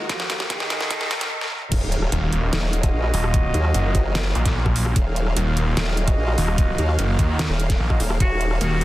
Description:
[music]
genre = heavy wobble dubstep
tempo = 148 BPM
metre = 4/4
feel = half-time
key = Eb minor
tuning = A4 = 440 Hz
[part]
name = supersaw chords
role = sustained chords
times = 0.0-8.8 s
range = Eb2 to Gb5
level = -31 LUFS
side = equal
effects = sidechain pumping
[part]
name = riser and impact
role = sound effects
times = 0.0-3.3 s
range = none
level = -31 LUFS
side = equal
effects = none
[part]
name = rich cello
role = melody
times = 0.1-1.6, 8.2-8.8 s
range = Eb3 to Gb4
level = -29 LUFS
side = equal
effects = tape echo
[part]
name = dubstep drum kit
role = drums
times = 0.1-8.8 s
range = crash cymbal, hi-hat, rim click, snare drum, toms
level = -26 LUFS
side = equal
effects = high-pass filter on snare, high-pass filter on hats, high-pass filter on toms, high-pass filter on cymbals, high-pass filter on room
[part]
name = electronic kick drum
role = drums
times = 0.1-8.3 s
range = none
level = -21 LUFS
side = equal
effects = none
[part]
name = formant-sweep wobble bass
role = bass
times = 1.7-8.6 s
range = Eb1 to Eb2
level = -22 LUFS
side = equal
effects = chorus, overdrive
[part]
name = snarling distorted saw bass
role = bass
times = 2.1-8.8 s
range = Eb1 to Eb2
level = -21 LUFS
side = equal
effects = distortion, overdrive
[part]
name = mellow brass ensemble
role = stabs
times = 2.4-8.0 s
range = F4 to Eb5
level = -29 LUFS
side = right 2 dB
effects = tape echo
[sound]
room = digital ambience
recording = dense, heavily limited modern master, high-pass filter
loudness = -19 LUFS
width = side -16 dB against mid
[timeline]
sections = 0.0-1.7 A section; 1.7-8.8 B section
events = build-up 0.0-1.7; drum fill 0.0-1.3, 1.4-1.7; riser 0.0-1.3; break 1.3-1.7; drop 1.7-8.8; impact 1.7-3.3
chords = 0.0 Ebm; 1.7 Ebmadd9

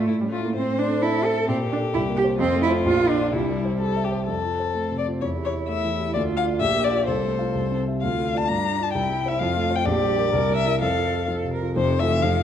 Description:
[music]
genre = quick classical-period movement for piano trio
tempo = 129 BPM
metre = 2/4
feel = straight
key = F major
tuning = A4 = 440 Hz
[part]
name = warm violin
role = melody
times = 0.0-12.4 s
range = E4 to Bb5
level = -26 LUFS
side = left 6 dB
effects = none
[part]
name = rich cello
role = second line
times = 0.0-12.4 s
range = C3 to Bb4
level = -26 LUFS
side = right 4 dB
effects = none
[part]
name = dark baby grand piano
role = accompaniment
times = 0.0-12.4 s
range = F1 to F5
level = -24 LUFS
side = equal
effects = none
[sound]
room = wet recital hall reverb, RT60 1.4 s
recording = dark, warm production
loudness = -20 LUFS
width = side -9 dB against mid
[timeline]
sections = 0.0-4.3 A section; 4.3-11.8 B section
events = none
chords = 0.1 A; 0.5 Am; 1.5 Bbmaj7; 1.9 C7(no3); 2.4 F; 2.9 Bb; 3.3 C; 4.3 F; 5.2 A7/E; 6.2 Dm; 6.6 Bb; 7.1 F/C; 7.6 C; 8.0 Dm; 8.5 Gm7; 8.9 C; 9.4 F; 9.9 Gm/Bb; 10.3 C7; 10.8 F

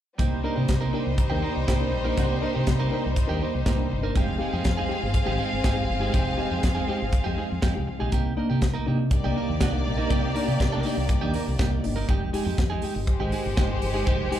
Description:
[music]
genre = disco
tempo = 121 BPM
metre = 4/4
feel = straight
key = unclear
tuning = A4 = 440 Hz
[part]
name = warm symphonic violin section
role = second line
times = 0.2-14.4 s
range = G3 to F5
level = -30 LUFS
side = left 2 dB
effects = slapback echo
[part]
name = clean electric guitar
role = accompaniment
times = 0.2-14.4 s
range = Ab3 to Bb4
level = -31 LUFS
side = right 9 dB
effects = slapback echo
[part]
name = reed electric piano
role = accompaniment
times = 0.2-14.4 s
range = C3 to Bb4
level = -33 LUFS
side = left 6 dB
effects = fast tremolo, slapback echo
[part]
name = fingered electric bass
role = bass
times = 0.2-14.3 s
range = F1 to C3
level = -27 LUFS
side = equal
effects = none
[part]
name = tight funk drum kit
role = drums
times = 0.2-14.4 s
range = hi-hat, kick drum, snare drum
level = -24 LUFS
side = equal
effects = none
[part]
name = dark French horn section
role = sustained chords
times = 8.1-14.4 s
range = C3 to G4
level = -36 LUFS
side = right 1 dB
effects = stereo widening
[sound]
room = small room ambience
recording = live gig heard through the venue's PA, club reverb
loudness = -22 LUFS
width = side -11 dB against mid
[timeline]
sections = 0.2-14.4 A section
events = none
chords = 0.2 Cm7; 4.2 Fm9; 8.1 Cm7; 12.1 Fm9

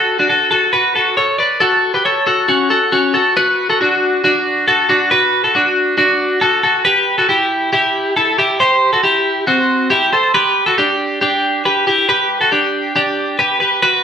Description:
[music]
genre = indie pop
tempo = 138 BPM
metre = 4/4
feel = straight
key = D major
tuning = A4 = 438 Hz
[part]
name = twelve-string electric guitar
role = solo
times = 0.0-14.0 s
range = C4 to D5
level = -12 LUFS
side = equal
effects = spring reverb
[sound]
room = moderate studio reverb, RT60 0.6 s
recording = band playing live in one room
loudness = -12 LUFS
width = side -8 dB against mid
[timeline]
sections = 0.0-3.4 A section; 3.4-14.0 B section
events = none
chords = 0.0 F#m; 3.4 D; 6.8 C; 10.3 G

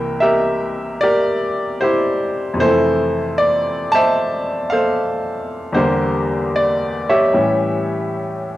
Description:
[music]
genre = solo jazz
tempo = 76 BPM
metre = 4/4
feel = swing 68% on 8ths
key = F major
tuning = A4 = 440 Hz
[part]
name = bright upright piano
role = solo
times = 0.0-8.6 s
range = C2 to A5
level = -16 LUFS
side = equal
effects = cassette tape
[sound]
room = moderate booth ambience, RT60 0.2 s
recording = home recording on cassette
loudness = -15 LUFS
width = side -15 dB against mid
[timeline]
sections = 0.0-8.6 A section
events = none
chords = 0.0 C7; 2.6 Fmaj7; 5.8 Em7b5; 7.3 A7

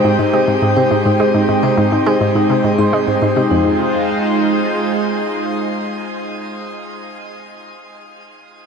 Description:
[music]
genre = ambient, sequencer-driven space music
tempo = 104 BPM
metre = 4/4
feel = straight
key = F minor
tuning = A4 = 440 Hz
[part]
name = lush unison pad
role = sustained chords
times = 0.0-6.6 s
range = Ab3 to C5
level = -18 LUFS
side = right 1 dB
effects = chorus
[part]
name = analog pluck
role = riff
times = 0.0-3.8 s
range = F2 to Ab3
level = -18 LUFS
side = right 1 dB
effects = chorus, tape echo
[part]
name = bubbling stepped-filter texture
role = texture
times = 0.0-3.5 s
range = G5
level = -27 LUFS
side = right 2 dB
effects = chorus, built-in reverb
[part]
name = vibraphone with soft mallets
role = arpeggios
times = 0.2-3.8 s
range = Eb4 to C6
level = -20 LUFS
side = left 3 dB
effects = auto-pan, tape echo
[sound]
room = wet shimmer reverb, RT60 7.1 s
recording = none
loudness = -13 LUFS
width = side -6 dB against mid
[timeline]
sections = 0.0-3.5 A section; 3.5-5.8 B section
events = none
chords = 0.0 Ab; 3.5 Fm7

